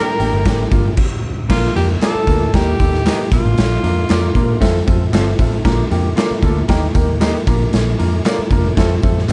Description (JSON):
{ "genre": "uptempo 1960s-style soul", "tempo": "116 BPM", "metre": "4/4", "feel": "straight", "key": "Bb major", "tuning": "A4 = 440 Hz", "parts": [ { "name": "breathy tenor saxophone", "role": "melody", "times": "0.0-4.8 s", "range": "F4 to Bb4", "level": "-24 LUFS", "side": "equal", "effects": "none" }, { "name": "mellow horn section", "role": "second line", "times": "0.0-0.6 s", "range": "none", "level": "barely audible", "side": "none", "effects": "none" }, { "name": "warm symphonic violin section", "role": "second line", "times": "0.0-0.9 s", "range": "D4 to G5", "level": "-34 LUFS", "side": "equal", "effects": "none" }, { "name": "warm upright piano", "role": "accompaniment", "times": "0.0-9.3 s", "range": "A3 to Bb4", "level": "-24 LUFS", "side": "equal", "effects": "none" }, { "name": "electric guitar through a small old amp", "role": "stabs", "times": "0.0-9.3 s", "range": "C4 to Eb5", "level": "-29 LUFS", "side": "equal", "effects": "none" }, { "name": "vintage muted fingered electric bass", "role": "bass", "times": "0.2-9.3 s", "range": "F1 to Bb2", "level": "-20 LUFS", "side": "equal", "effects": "none" }, { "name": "raw garage drum kit", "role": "drums", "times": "0.2-9.3 s", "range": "crash cymbal, hi-hat, kick drum, snare drum", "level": "-19 LUFS", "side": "equal", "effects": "none" }, { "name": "tambourine and handclaps", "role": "percussion", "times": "0.2-9.3 s", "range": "none", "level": "-36 LUFS", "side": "equal", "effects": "none" } ], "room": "little or no reverb", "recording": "dark, warm production, nothing above 10.4 kHz", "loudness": "-16 LUFS", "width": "mono", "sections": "0.0-1.5 A section; 1.5-9.3 B section", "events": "band accent 0.0-1.5; stop 1.0-1.5", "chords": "0.0 Gm; 1.5 Bb; 2.5 Eb; 3.3 Bb; 4.6 F; 5.7 Bb; 6.7 Eb; 7.5 Bb; 8.8 F" }